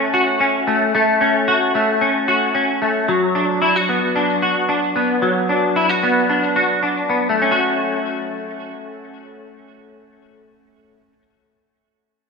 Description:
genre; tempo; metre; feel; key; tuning
dream pop; 112 BPM; 4/4; straight; unclear; A4 = 437 Hz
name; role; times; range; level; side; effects
semi-hollow electric guitar; arpeggios; 0.0-11.2 s; F#3 to F#4; -16 LUFS; left 1 dB; ensemble chorus, ping-pong delay
room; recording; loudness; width
wet scoring stage reverb, RT60 1.8 s, small room ambience; none; -15 LUFS; side -4 dB against mid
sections
0.0-7.4 A section; 7.4-11.6 B section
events
none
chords
0.0 A6; 3.1 Bm/F#; 7.4 A6

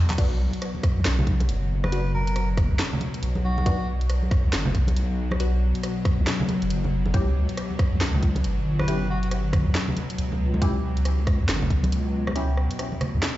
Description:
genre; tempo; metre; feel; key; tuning
deep dubstep; 138 BPM; 4/4; swing 61% on 16ths, half-time; unclear; A4 = 439 Hz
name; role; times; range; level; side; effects
bowed-like drone; sustained chords; 0.0-13.4 s; B2 to F#3; -30 LUFS; left 2 dB; built-in reverb
deep soft wobble bass; bass; 0.0-13.2 s; F#1 to E2; -23 LUFS; equal; chorus
garage drum kit; drums; 0.1-13.3 s; crash cymbal, handclaps, hi-hat, rim click, snare drum; -30 LUFS; equal; overdrive
congas; percussion; 0.1-13.1 s; none; -31 LUFS; right 1 dB; none
filtered dub chord stab; stabs; 0.2-12.4 s; B3 to G4; -36 LUFS; left 2 dB; phaser, dub echo
electronic kick drum; drums; 0.2-11.8 s; none; -22 LUFS; equal; overdrive
melodica; melody; 1.8-3.9, 8.8-9.3 s; F#4 to B4; -34 LUFS; equal; dub echo
room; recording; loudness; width
light reverb, digital ambience; played on a big sound system in a bare room, stone room reverb, nothing above 7.8 kHz; -21 LUFS; side -15 dB against mid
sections
0.0-13.4 A section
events
drum fill 0.0; break 12.4-13.4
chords
0.2 B5; 7.1 C#(b5, no3)

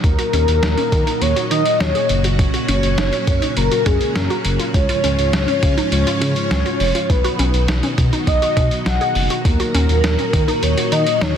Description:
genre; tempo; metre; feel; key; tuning
synth-pop; 102 BPM; 4/4; straight; Eb minor; A4 = 440 Hz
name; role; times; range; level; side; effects
warm velvety synth lead; melody; 0.0-11.4 s; Ab4 to F#5; -20 LUFS; left 1 dB; chorus, phaser, digital delay
string machine, violins; sustained chords; 0.0-11.4 s; Ab2 to Gb4; -23 LUFS; equal; ensemble chorus
smooth synth bass; bass; 0.0-11.3 s; F1 to Eb3; -19 LUFS; equal; none
lo-fi sampler-style drum kit; drums; 0.0-11.4 s; hi-hat, kick drum, snare drum; -20 LUFS; equal; overdrive
resonant blip pluck; arpeggios; 0.2-11.3 s; Db4 to Ab4; -27 LUFS; right 2 dB; chorus, digital delay
room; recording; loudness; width
light reverb; dense, heavily limited modern master; -15 LUFS; side -8 dB against mid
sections
0.0-11.4 A section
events
none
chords
0.0 Ebm; 2.1 Gb; 4.7 Db; 7.1 B; 9.4 Ebm

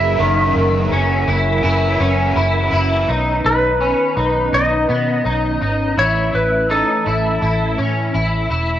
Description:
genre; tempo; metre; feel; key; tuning
dream pop; 83 BPM; 4/4; straight; unclear; A4 = 439 Hz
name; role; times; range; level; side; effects
clean lap steel guitar; melody; 0.0-7.8 s; A4 to E5; -19 LUFS; equal; cassette tape, tape echo
overdriven electric guitar; accompaniment; 0.0-3.1 s; F#2 to E4; -24 LUFS; right 3 dB; tremolo, wide subtle chorus
ensemble organ-string; sustained chords; 0.0-8.8 s; D#3 to A#4; -24 LUFS; right 1 dB; phaser, ensemble chorus
electric guitar at the edge of break-up; arpeggios; 0.0-8.8 s; D#3 to E4; -19 LUFS; left 1 dB; ensemble chorus, tape echo
vintage muted fingered electric bass; bass; 0.0-8.8 s; E1 to B2; -20 LUFS; equal; none
vibraphone with medium mallets; texture; 1.4-3.4 s; G#5 to C#6; -33 LUFS; right 1 dB; none
room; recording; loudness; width
moderate spring reverb, RT60 1.8 s; home recording on cassette, nothing above 7.9 kHz; -14 LUFS; side -11 dB against mid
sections
0.0-3.1 A section; 3.1-8.8 B section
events
none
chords
0.0 F#7; 3.1 Badd9; 6.0 A

